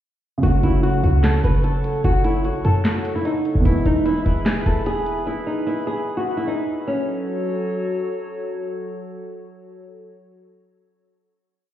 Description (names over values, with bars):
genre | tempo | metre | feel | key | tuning
hip hop, trap | 149 BPM | 4/4 | half-time | F# minor | A4 = 439 Hz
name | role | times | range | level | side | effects
flamenco guitar | melody | 0.4-8.0 s | C#4 to B4 | -23 LUFS | left 1 dB | low-pass filter, digital delay
dark baby grand piano | accompaniment | 0.4-6.7 s | B2 to F#4 | -25 LUFS | right 3 dB | low-pass filter
hollow soft pad | sustained chords | 0.4-10.1 s | F#3 to C#6 | -29 LUFS | left 1 dB | chorus
short 808-style bass | bass | 0.4-5.2 s | E1 to F#2 | -20 LUFS | equal | none
trap drum kit | drums | 0.4-5.2 s | handclaps, hi-hat, snare drum | -23 LUFS | equal | none
room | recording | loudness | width
digital ambience | heard muffled through a wall, stone room reverb, EQ | -18 LUFS | side -12 dB against mid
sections
0.4-6.9 hook; 6.9-10.1 final chord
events
none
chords
0.4 F#m; 3.7 E; 6.9 F#m